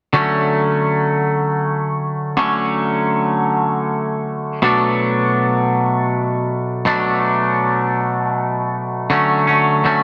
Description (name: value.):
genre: rock.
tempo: 54 BPM (dotted quarters).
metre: 6/8.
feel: straight.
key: unclear.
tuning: A4 = 440 Hz.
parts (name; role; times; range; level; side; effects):
twangy electric guitar; solo; 0.1-10.0 s; B2 to D4; -18 LUFS; equal; lush chorus, digital delay.
room: moderate plate reverb, RT60 3.1 s.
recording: none.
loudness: -18 LUFS.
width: mono.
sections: 0.1-9.1 A section.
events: none.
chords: 0.1 Dmaj7; 4.6 Bm7; 9.1 Dmaj7.